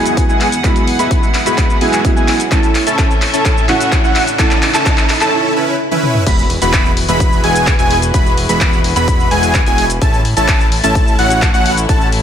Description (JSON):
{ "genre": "EDM, festival progressive house", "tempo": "128 BPM", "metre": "4/4", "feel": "straight", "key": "E major", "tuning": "A4 = 440 Hz", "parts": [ { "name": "dark grand piano", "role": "accompaniment", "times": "0.0-6.3 s", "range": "E3 to E4", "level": "-21 LUFS", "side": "right 4 dB", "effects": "sidechain pumping, digital delay" }, { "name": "warm chamber string section", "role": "sustained chords", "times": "0.0-12.2 s", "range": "E2 to F#5", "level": "-22 LUFS", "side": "left 1 dB", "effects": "sidechain pumping" }, { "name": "wide unison lead", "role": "arpeggios", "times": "0.0-12.1 s", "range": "F#5 to B5", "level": "-18 LUFS", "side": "equal", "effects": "sidechain pumping, digital delay" }, { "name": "dense compressed supersaw", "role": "riff", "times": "0.0-12.1 s", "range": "G#3 to B4", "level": "-18 LUFS", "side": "right 1 dB", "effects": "sidechain pumping, low-pass filter, digital delay" }, { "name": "riser, swell and impact", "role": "sound effects", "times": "1.7-8.1 s", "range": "none", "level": "-27 LUFS", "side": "equal", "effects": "none" }, { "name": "big-room dance drum kit", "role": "drums", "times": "0.1-12.2 s", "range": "crash cymbal, handclaps, hi-hat, shaker, toms", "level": "-19 LUFS", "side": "left 1 dB", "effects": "none" }, { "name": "electronic kick drum", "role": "drums", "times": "0.2-12.0 s", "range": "none", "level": "-14 LUFS", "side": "equal", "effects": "none" }, { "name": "fat analog bass", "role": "bass", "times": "6.3-12.2 s", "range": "E1 to A1", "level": "-18 LUFS", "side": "equal", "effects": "sidechain pumping" } ], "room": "moderate lush hall reverb, RT60 1.6 s", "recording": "none", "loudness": "-10 LUFS", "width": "side -9 dB against mid", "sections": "0.0-6.3 A section; 6.3-12.2 B section", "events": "build-up 0.0-6.3; drum fill 0.0-5.3, 5.9-6.3; filter sweep on analog synth lead 0.0-6.3; break 5.3-6.3; drop 6.3-12.2; impact 6.3-8.1", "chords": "0.0 Eadd9; 2.5 A; 6.3 Eadd9; 10.0 A" }